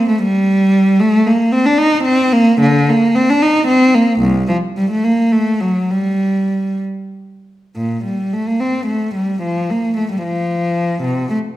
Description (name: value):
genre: classical, baroque-style suite movement for unaccompanied cello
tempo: 60-78 BPM (dotted quarters)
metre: 6/8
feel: rubato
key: G minor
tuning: A4 = 436 Hz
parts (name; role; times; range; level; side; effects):
- warm cello; solo; 0.0-11.4 s; C2 to Eb4; -13 LUFS; equal; none
room: wet recital hall reverb, RT60 1.4 s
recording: none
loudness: -13 LUFS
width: side -14 dB against mid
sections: 0.0-7.8 A section; 7.8-11.6 A section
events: none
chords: none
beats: 0.23 | 1.01 1.78 | 2.61 3.41 | 4.20 5.03 | 5.90 6.80 | 7.75 8.60 | 9.43 10.23 | 11.04